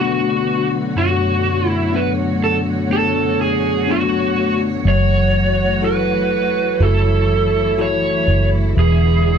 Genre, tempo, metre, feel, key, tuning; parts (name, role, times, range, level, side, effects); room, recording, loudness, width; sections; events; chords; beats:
pop ballad; 62 BPM; 4/4; straight; B dorian; A4 = 440 Hz
lead guitar through a small cranked amp; melody; 0.0-9.4 s; F#4 to C#5; -18 LUFS; right 2 dB; overdrive, slapback echo
bell-like tine electric piano; accompaniment; 0.0-9.4 s; F#2 to A4; -20 LUFS; left 6 dB
warm studio string section; sustained chords; 0.0-9.4 s; D3 to C#5; -23 LUFS; right 3 dB
vintage muted fingered electric bass; bass; 4.8-9.4 s; E1 to F#1; -17 LUFS; right 1 dB
little or no reverb; dry, close 1970s-style studio recording; -14 LUFS; side -7 dB against mid
0.0-9.4 A section
0.0 Bm7; 4.9 F#m7; 8.8 E7
| 0.96 1.94 2.91 3.88 | 4.86 5.83 6.80 7.79 | 8.77